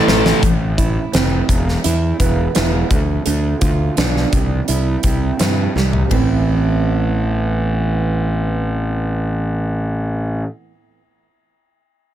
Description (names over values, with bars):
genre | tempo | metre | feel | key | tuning
quiet-loud alternative rock | 84 BPM | 4/4 | straight | A minor | A4 = 439 Hz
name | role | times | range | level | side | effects
fuzz fingered electric bass | bass | 0.1-10.4 s | E1 to G2 | -18 LUFS | left 1 dB | overdrive
huge arena drum kit | drums | 0.1-6.3 s | hi-hat, kick drum, ride cymbal, snare drum, toms | -19 LUFS | equal | none
fingerpicked steel-string acoustic guitar | arpeggios | 0.4-10.5 s | E2 to F4 | -22 LUFS | right 7 dB | tape echo
room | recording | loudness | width
light reverb, studio ambience | none | -15 LUFS | side -11 dB against mid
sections
0.4-6.1 A section; 6.1-9.0 B section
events
drum fill 0.0-0.4, 5.8-6.1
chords
0.4 Am; 1.5 E5; 2.9 Dm; 4.3 C; 6.1 Amadd9